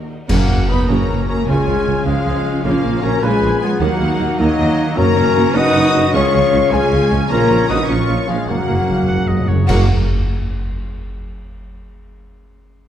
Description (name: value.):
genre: cinematic, heroic adventure film score.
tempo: 102 BPM (dotted quarters).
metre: 6/8.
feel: straight.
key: F# major.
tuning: A4 = 440 Hz.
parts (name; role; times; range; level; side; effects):
rich symphonic violin section; melody; 0.0-9.9 s; D#5 to D#6; -27 LUFS; left 3 dB; none.
warm symphonic violin section; second line; 0.0-9.9 s; D#5 to D#6; -30 LUFS; left 1 dB; none.
warm symphonic viola section; accompaniment; 0.0-9.9 s; C#3 to D#4; -25 LUFS; right 1 dB; none.
mellow French horn section; sustained chords; 0.0-9.9 s; D#4 to D#5; -20 LUFS; left 5 dB; none.
concert harp; arpeggios; 0.0-10.9 s; F#2 to A#5; -25 LUFS; left 6 dB; none.
dark studio cello section; bass; 0.0-9.9 s; D#3 to D#4; -22 LUFS; right 2 dB; none.
concert flute; second line; 0.3-9.9 s; D#5 to D#6; -28 LUFS; equal; none.
mellow clarinet; second line; 0.3-9.9 s; A#3 to B4; -26 LUFS; left 1 dB; none.
dark trumpet section; stabs; 0.3-9.9 s; F#3 to B4; -24 LUFS; right 2 dB; none.
mellow tuba; bass; 0.3-9.9 s; F#1 to D#2; -24 LUFS; right 4 dB; none.
warm symphonic double bass section; bass; 0.3-9.9 s; F#1 to F#2; -23 LUFS; right 3 dB; none.
clash cymbals and concert bass drum; percussion; 0.3-1.0, 9.7-10.4 s; none; -21 LUFS; equal; none.
timpani; percussion; 1.5-2.0, 5.0-9.9 s; F#2 to C#3; -22 LUFS; equal; none.
bright oboe; second line; 9.1-9.7 s; C#5 to F#5; -29 LUFS; right 2 dB; none.
room: moderate scoring stage reverb, RT60 1.9 s.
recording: dark, warm production.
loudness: -13 LUFS.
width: side -10 dB against mid.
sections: 0.3-9.7 A section; 9.7-10.9 B section.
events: band accent 0.3-0.7, 9.7-10.1; timpani fill 8.5-9.7.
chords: 0.3 F#; 1.5 C#; 2.6 A#m; 3.8 D#m; 5.0 F#; 6.1 C#; 7.3 A#m; 8.5 F#add9.